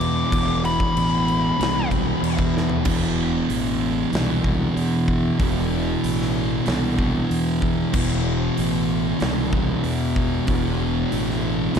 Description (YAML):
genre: stoner and doom metal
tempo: 94 BPM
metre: 4/4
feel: straight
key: unclear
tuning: A4 = 440 Hz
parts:
  - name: fuzz lead guitar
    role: melody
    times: 0.0-1.9 s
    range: B5 to D6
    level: -25 LUFS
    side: left 3 dB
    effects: distortion, tape echo
  - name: thick fuzz guitar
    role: riff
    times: 0.0-11.8 s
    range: E2 to E3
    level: -25 LUFS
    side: left 10 dB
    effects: distortion
  - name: thick fuzz guitar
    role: riff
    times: 0.0-11.8 s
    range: E2 to E3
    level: -24 LUFS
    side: right 11 dB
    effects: distortion
  - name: fuzz fingered electric bass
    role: bass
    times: 0.0-11.8 s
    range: E1 to E2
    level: -26 LUFS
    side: equal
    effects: overdrive
  - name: big rock drum kit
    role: drums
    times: 0.0-11.8 s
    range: crash cymbal, hi-hat, kick drum, snare drum, toms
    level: -27 LUFS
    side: equal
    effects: none
room: light reverb, small room ambience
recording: dark, warm production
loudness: -19 LUFS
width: side -7 dB against mid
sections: 0.0-2.9 A section; 2.9-11.8 B section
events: lead electric guitar solo 0.0-2.9; drum fill 2.5-2.9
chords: 0.0 E5